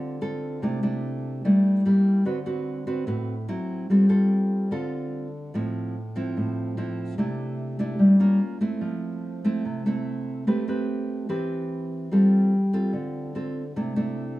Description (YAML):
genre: bossa nova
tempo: 146 BPM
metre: 4/4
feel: straight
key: C major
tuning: A4 = 440 Hz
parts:
  - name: nylon-string guitar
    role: solo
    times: 0.0-14.4 s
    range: A2 to B4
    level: -22 LUFS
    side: equal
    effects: none
room: light reverb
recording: none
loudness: -22 LUFS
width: side -17 dB against mid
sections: 0.0-14.4 A section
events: none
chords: 0.0 G9sus4 (rootless); 0.6 C69; 1.8 Gm6; 2.3 D6; 3.5 C; 3.9 G9sus4; 5.5 Fmaj7/A; 7.2 C69; 8.4 C13b9; 8.8 Fmaj7; 10.5 Am9; 12.1 G9sus4; 13.8 C69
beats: 0.21 | 0.62 1.03 1.44 1.85 | 2.26 2.67 3.08 3.49 | 3.90 4.31 4.72 5.13 | 5.54 5.95 6.36 6.77 | 7.18 7.59 8.00 8.41 | 8.82 9.23 9.64 10.06 | 10.47 10.88 11.29 11.70 | 12.11 12.52 12.93 13.35 | 13.76 14.17